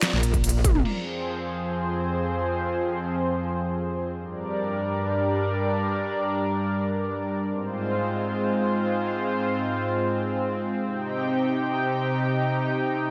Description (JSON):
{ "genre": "heavy wobble dubstep", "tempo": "free time", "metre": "none", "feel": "none", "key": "F dorian", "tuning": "A4 = 440 Hz", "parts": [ { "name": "lush unison pad", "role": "sustained chords", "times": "0.0-13.1 s", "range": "F2 to G5", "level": "-27 LUFS", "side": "equal", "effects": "chorus, sidechain pumping" }, { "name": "dubstep drum kit", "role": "drums", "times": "0.0-0.9 s", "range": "crash cymbal, handclaps, hi-hat, ride cymbal, snare drum, toms", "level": "-30 LUFS", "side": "equal", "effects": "low-pass filter on hats, low-pass filter on cymbals, low-pass filter on perc, low-pass filter on snare, low-pass filter on toms" }, { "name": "metallic wobble bass", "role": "bass", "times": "0.1-0.8 s", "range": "Bb1", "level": "-25 LUFS", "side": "equal", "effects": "chorus, overdrive" }, { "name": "electronic kick drum", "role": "drums", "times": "0.3-0.7 s", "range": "none", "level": "-26 LUFS", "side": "equal", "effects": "none" } ], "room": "moderate lush hall reverb, RT60 2.1 s", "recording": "none", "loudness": "-26 LUFS", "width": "mono", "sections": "0.9-13.1 A section", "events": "drum fill 0.6", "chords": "0.0 Bb; 0.9 Fm; 4.2 Gm; 7.5 Fm/Ab; 10.8 Cm" }